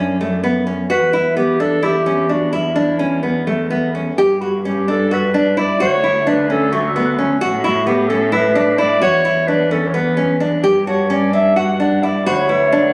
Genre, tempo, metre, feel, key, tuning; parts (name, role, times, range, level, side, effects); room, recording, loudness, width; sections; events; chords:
contemporary instrumental, chamber music in an uneven meter; 259 BPM (eighths); 7/8; straight; E dorian; A4 = 440 Hz
nylon-string guitar; arpeggios; 0.0-12.9 s; A3 to G4; -20 LUFS; equal
rich cello; bass; 0.0-12.9 s; D2 to A2; -24 LUFS; equal
warm clarinet; melody; 0.9-12.9 s; E4 to F#5; -20 LUFS; equal
worn celesta; texture; 4.4-7.9, 10.9-12.9 s; B4 to F#6; -29 LUFS; equal
moderate recital hall reverb, RT60 1.6 s; recorded on a phone in the room, studio ambience; -16 LUFS; mono
0.0-4.2 A section; 4.2-12.9 B section
0.0 F#m; 0.9 Em7; 4.2 Gmaj7; 5.8 Dmaj7; 7.4 Asus2; 9.0 E5; 10.6 G5; 12.3 Dmaj7